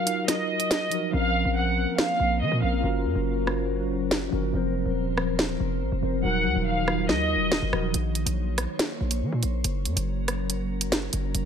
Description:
hip hop, drill; 141 BPM; 4/4; half-time; Bb minor; A4 = 443 Hz
warm studio violin section; melody; 0.0-2.8, 6.2-7.9 s; Eb5 to Gb5; -27 LUFS; right 2 dB; low-pass filter, ping-pong delay
mellow tine electric piano; accompaniment; 0.0-8.0 s; F3 to C5; -28 LUFS; left 1 dB; medium stereo tremolo, low-pass filter
drill drum kit; drums; 0.1-11.4 s; hi-hat, rim click, snare drum; -27 LUFS; equal
glassy FM pad; sustained chords; 1.6-11.5 s; Eb3 to Db5; -32 LUFS; equal; ensemble chorus, built-in reverb
hard-hitting 808-style bass; bass; 1.1-11.5 s; Eb1 to F3; -28 LUFS; equal
light reverb; -23 LUFS; side -8 dB against mid
0.0-11.5 A section
break 0.0-1.1, 7.9-11.5; hi-hats muted 1.1-7.9
0.0 Ebmadd9; 1.1 Bbmadd9; 2.8 Gbmaj7; 4.5 Fsus4; 6.2 Ebmadd9; 7.9 Bbmadd9; 9.6 Gb

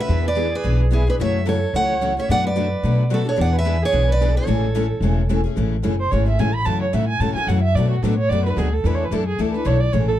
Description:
acoustic string swing (jazz manouche); 219 BPM; 4/4; swing 57% on 8ths; A4 = 441 Hz
picked steel-string acoustic guitar; melody; 0.0-5.3 s; G#4 to F#5; -23 LUFS; right 3 dB
warm violin; second line; 0.0-10.2 s; E4 to B5; -25 LUFS; right 3 dB
picked steel-string acoustic guitar; accompaniment; 0.0-10.1 s; B2 to A4; -26 LUFS; left 8 dB
picked steel-string acoustic guitar; accompaniment; 0.1-10.1 s; B2 to B4; -29 LUFS; right 3 dB
upright bass; bass; 0.1-10.2 s; E1 to B2; -20 LUFS; equal
light reverb; dark, warm production; -17 LUFS; side -12 dB against mid
0.0-5.6 A section; 5.6-10.2 B section
violin solo 5.6-10.2
0.1 E7; 1.2 F#m7; 2.3 Bm7/F#; 3.4 E7; 4.5 Amaj7; 5.6 F#m7; 7.8 Bm7; 8.9 E9sus4

